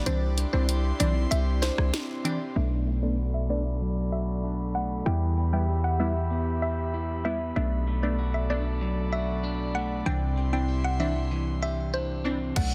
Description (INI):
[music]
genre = dancehall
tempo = 96 BPM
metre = 4/4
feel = straight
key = B phrygian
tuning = A4 = 440 Hz
[part]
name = airy breathy pad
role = sustained chords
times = 0.0-12.5 s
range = E4 to C6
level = -40 LUFS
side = equal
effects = chorus, sidechain pumping, low-pass filter
[part]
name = electric guitar at the edge of break-up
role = arpeggios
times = 0.0-12.7 s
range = B2 to G4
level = -35 LUFS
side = equal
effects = low-pass filter
[part]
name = mallet-like synth pluck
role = melody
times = 0.1-12.7 s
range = C5 to G5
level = -36 LUFS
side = equal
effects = chorus, low-pass filter, digital delay
[part]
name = wavetable chord stab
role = accompaniment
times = 0.1-12.7 s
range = E3 to E4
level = -34 LUFS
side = equal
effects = sidechain pumping, low-pass filter
[part]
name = hard-hitting 808-style bass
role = bass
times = 0.1-12.7 s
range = B1 to E2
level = -30 LUFS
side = equal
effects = none
[part]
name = island pop drum kit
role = drums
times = 0.1-2.4, 12.6-12.7 s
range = crash cymbal, hi-hat, kick drum, rim click, snare drum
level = -33 LUFS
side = equal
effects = none
[sound]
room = digital ambience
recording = dense, heavily limited modern master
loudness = -27 LUFS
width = mono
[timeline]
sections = 0.0-2.6 A section; 2.6-12.6 B section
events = break 0.1-2.6; filter sweep 2.6-12.6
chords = 0.1 Cadd9; 2.6 Bm7; 5.1 Em; 7.6 Bm7; 10.1 Cadd9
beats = | 0.06 0.69 1.31 1.94 | 2.56 3.19 3.81 4.44 | 5.06 5.69 6.31 6.94 | 7.56 8.19 8.81 9.44 | 10.06 10.69 11.31 11.94 | 12.56